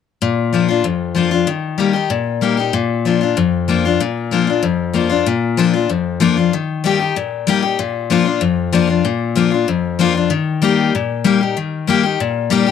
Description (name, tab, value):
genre	rock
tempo	190 BPM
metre	4/4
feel	straight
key	Bb major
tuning	A4 = 440 Hz
part	picked steel-string acoustic guitar	solo	0.2-12.7 s	F2 to G4	-14 LUFS	left 7 dB	none
room	light reverb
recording	none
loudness	-14 LUFS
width	side -7 dB against mid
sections	0.2-5.3 A section; 5.3-12.7 B section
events	none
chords	0.2 Bb; 1.5 Eb; 2.7 Bb; 6.5 Eb; 7.8 Bb; 10.3 Eb